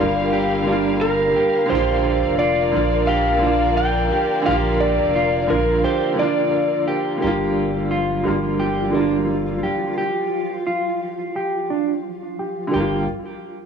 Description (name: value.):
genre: trip hop.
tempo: 87 BPM.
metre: 4/4.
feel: swing 59% on 16ths.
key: G minor.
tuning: A4 = 440 Hz.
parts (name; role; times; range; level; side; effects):
electric slide guitar; melody; 0.0-6.8 s; Bb4 to G5; -22 LUFS; equal; vintage 12-bit sampler grit, cassette tape, dub echo.
clear upright piano; accompaniment; 0.0-13.0 s; D3 to F4; -22 LUFS; equal; tremolo, cassette tape, tape echo.
muted studio violin section; sustained chords; 0.0-7.2 s; G3 to F5; -25 LUFS; left 1 dB; cassette tape.
round analog bass; bass; 0.0-13.1 s; F1 to Bb1; -26 LUFS; right 1 dB; none.
clean electric guitar; arpeggios; 0.3-13.1 s; D4 to G4; -25 LUFS; right 2 dB; low-pass filter, cassette tape, tape echo.
flickering grainy texture; texture; 7.8-12.8 s; F3 to F4; -28 LUFS; equal; built-in reverb, cassette tape.
room: light reverb.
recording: home recording on cassette, small room ambience.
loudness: -17 LUFS.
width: side -6 dB against mid.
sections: 0.0-7.2 A section; 7.2-12.7 B section.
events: filter sweep on clean electric guitar 7.2-12.7.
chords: 0.0 Gm7; 1.7 Bb; 7.2 Gm7.